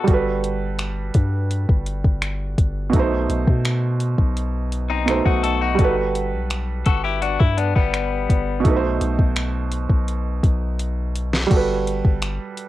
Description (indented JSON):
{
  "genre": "contemporary R&B",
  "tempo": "84 BPM",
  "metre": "4/4",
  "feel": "straight",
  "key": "G major",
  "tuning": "A4 = 440 Hz",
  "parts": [
    { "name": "felt-muted upright piano", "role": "accompaniment", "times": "0.0-12.7 s", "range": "B2 to C5", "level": "-24 LUFS", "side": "right 5 dB", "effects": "plate reverb" },
    { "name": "clean electric guitar", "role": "arpeggios", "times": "0.0-0.1, 4.9-8.6 s", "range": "G3 to A4", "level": "-24 LUFS", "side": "left 9 dB", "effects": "tape echo, plate reverb" },
    { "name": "long sustained 808-style bass", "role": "bass", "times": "0.1-12.4 s", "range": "G1 to B2", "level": "-24 LUFS", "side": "equal", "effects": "none" },
    { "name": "smooth R&B drum kit", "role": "drums", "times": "0.1-12.7 s", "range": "crash cymbal, finger snaps, hi-hat, kick drum, snare drum", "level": "-19 LUFS", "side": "equal", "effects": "cassette tape" }
  ],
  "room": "light reverb",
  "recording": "home recording on cassette",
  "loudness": "-18 LUFS",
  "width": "side -15 dB against mid",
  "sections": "0.0-11.5 A section; 11.5-12.7 B section",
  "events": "drum fill 10.8-11.5",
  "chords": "0.1 Gmaj9; 2.9 B7b9; 5.8 Gmaj9; 8.7 B7b9; 11.5 Gmaj9"
}